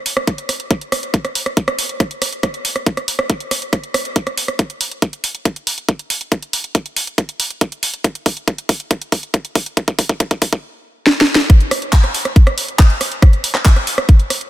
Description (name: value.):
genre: trance.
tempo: 139 BPM.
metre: 4/4.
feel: straight.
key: none.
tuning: none.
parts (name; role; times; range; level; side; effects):
garage drum kit; drums; 0.1-14.5 s; handclaps, hi-hat, rim click, snare drum; -18 LUFS; right 1 dB; overdrive.
electronic kick drum; drums; 0.3-14.2 s; none; -11 LUFS; equal; overdrive, high-pass filter on kick.
room: little or no reverb.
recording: dense, heavily limited modern master.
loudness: -14 LUFS.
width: side -15 dB against mid.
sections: 0.0-11.5 A section; 11.5-14.5 B section.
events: build-up 0.0-11.5; drum fill 4.6-10.6, 11.1-11.5; drop 11.5-14.5.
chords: none.